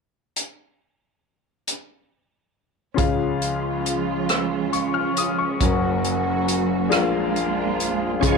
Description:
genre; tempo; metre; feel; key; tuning
slow gospel; 46 BPM (dotted quarters); 6/8; straight; Db major; A4 = 440 Hz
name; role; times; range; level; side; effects
swinging big-band drum kit; drums; 0.4-8.4 s; hi-hat, kick drum, rim click; -24 LUFS; right 2 dB; none
clear grand piano; accompaniment; 2.9-8.4 s; Gb1 to F6; -22 LUFS; left 6 dB; none
warm studio string section; sustained chords; 3.0-8.4 s; F3 to Gb4; -26 LUFS; right 12 dB; none
bright tonewheel organ; sustained chords; 8.2-8.4 s; F3 to Db5; -24 LUFS; right 13 dB; slow rotary speaker, chorus vibrato
room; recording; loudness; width
moderate spring reverb, RT60 2.3 s; 1960s-style stereo with parts hard left and right; -20 LUFS; side -4 dB against mid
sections
0.4-3.0 A section; 3.0-8.2 B section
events
none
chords
0.4 N.C.; 3.0 Db; 5.6 Gb; 6.9 Bb7

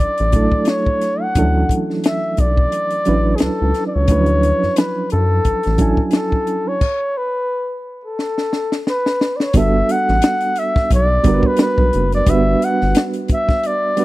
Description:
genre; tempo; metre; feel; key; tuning
R&B, neo-soul; 88 BPM; 4/4; swing 56% on 16ths; G major from 9.5 s; A4 = 442 Hz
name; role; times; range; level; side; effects
breathy flugelhorn; melody; 0.0-14.0 s; Ab4 to F#5; -19 LUFS; left 1 dB; none
reed electric piano; accompaniment; 0.0-14.0 s; E3 to Ab5; -20 LUFS; right 3 dB; fast tremolo
rubbery square bass; bass; 0.0-12.9 s; F#1 to F#2; -17 LUFS; equal; none
compact cocktail drum kit; drums; 0.2-14.0 s; crash cymbal, hi-hat, kick drum, snare drum; -18 LUFS; left 1 dB; none
room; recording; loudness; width
small room ambience; dry, close 1970s-style studio recording; -14 LUFS; side -18 dB against mid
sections
0.0-9.5 A section; 9.5-14.0 B section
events
stop 6.8-9.5; drum fill 8.2-9.5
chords
0.0 Dmaj9; 9.5 Gmaj9

